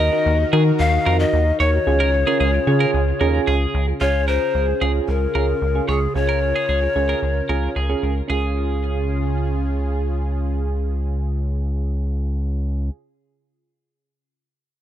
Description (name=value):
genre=pop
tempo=112 BPM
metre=4/4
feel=straight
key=Db major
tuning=A4 = 440 Hz
part: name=breathy bright large pan pipes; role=melody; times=0.0-7.8 s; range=Ab4 to F5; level=-22 LUFS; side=left 3 dB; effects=plate reverb, ping-pong delay
part: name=twelve-string electric guitar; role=second line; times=0.0-9.9 s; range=F4 to Db5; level=-26 LUFS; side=right 3 dB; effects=ping-pong delay
part: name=warm analog pad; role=sustained chords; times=0.0-12.9 s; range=Db3 to Bb4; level=-27 LUFS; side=equal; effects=chorus
part: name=rubbery square bass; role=bass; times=0.0-12.9 s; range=Db2 to Eb3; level=-20 LUFS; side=equal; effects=none
part: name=soft electric-piano-like synth keys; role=accompaniment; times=0.1-12.9 s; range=Db4 to Bb4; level=-26 LUFS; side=right 5 dB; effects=chorus, plate reverb
room=light reverb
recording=dark, warm production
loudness=-18 LUFS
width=side -11 dB against mid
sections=0.0-4.0 A section; 4.0-8.3 B section; 8.3-12.6 C section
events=none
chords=0.0 Ebm; 1.9 Db